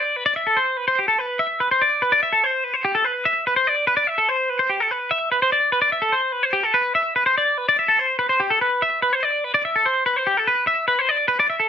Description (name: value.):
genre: rock.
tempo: 291 BPM (eighths).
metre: 9/8.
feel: straight.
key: unclear.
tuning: A4 = 440 Hz.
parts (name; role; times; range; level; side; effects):
twangy electric guitar; solo; 0.0-11.7 s; G4 to E5; -17 LUFS; left 1 dB; analog chorus, slapback echo.
room: light reverb.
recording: dark, warm production.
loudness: -17 LUFS.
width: side -8 dB against mid.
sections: 0.0-11.7 A section.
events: none.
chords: none.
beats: 0.06 | 0.27 0.47 0.68 0.88 1.09 1.30 1.50 1.71 1.91 | 2.12 2.33 2.53 2.74 2.94 3.15 3.35 3.56 3.77 | 3.97 4.18 4.38 4.59 4.79 5.00 5.21 5.41 5.62 | 5.82 6.03 6.24 6.44 6.65 6.85 7.06 7.26 7.47 | 7.68 7.88 8.09 8.29 8.50 8.71 8.91 9.12 9.33 | 9.53 9.74 9.95 10.15 10.36 10.56 10.77 10.98 11.19 | 11.39 11.60.